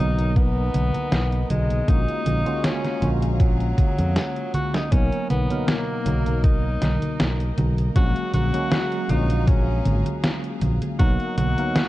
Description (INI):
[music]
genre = vaporwave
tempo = 79 BPM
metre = 4/4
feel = swing 54% on 16ths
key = unclear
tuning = A4 = 439 Hz
[part]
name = bright tenor saxophone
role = melody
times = 0.0-11.9 s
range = F#3 to F#4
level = -29 LUFS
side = left 1 dB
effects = tape echo
[part]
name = tine electric piano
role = accompaniment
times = 0.0-11.9 s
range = B2 to A#4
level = -28 LUFS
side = equal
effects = medium stereo tremolo, analog chorus
[part]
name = clear chamber string section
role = sustained chords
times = 0.0-11.9 s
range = G#4 to A#5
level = -39 LUFS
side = left 1 dB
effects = none
[part]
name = fingered electric bass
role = bass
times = 0.0-11.5 s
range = G#1 to E#2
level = -23 LUFS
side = equal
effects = none
[part]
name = detuned 8-bit digital drum machine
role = drums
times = 0.2-11.9 s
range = congas, hi-hat, snare drum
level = -26 LUFS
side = right 1 dB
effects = none
[part]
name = electronic kick drum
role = drums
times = 0.4-11.2 s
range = none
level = -19 LUFS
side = equal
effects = none
[sound]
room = little or no reverb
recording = dark, warm production, cassette tape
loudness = -19 LUFS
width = side -16 dB against mid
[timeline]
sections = 0.0-4.9 A section; 4.9-11.9 B section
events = break 4.2-4.9; drum fill 4.2-4.9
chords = 0.0 Bmaj7; 1.9 F#maj9/A#; 4.9 Bmaj7; 8.0 F#maj9/A#; 11.0 Bmaj7